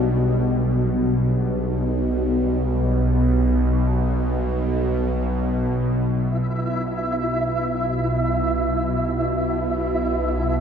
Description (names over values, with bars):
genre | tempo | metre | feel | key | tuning
dark ambient drone | free time | none | none | B minor | A4 = 445 Hz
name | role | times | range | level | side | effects
deep dark ambient pad | sustained chords | 0.0-6.1 s | G3 to D5 | -35 LUFS | left 1 dB | none
bowed-like drone | drone | 0.0-10.6 s | B1 to B2 | -20 LUFS | equal | built-in reverb, phaser
flickering grainy texture | texture | 6.3-10.6 s | E4 to E5 | -24 LUFS | right 1 dB | built-in reverb
room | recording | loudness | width
wet huge ambient reverb, RT60 7.8 s | none | -19 LUFS | side -7 dB against mid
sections
0.0-6.1 A section; 6.1-10.6 B section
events
filter sweep on synth drone 0.0-6.1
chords
0.0 G5; 6.1 Bsus4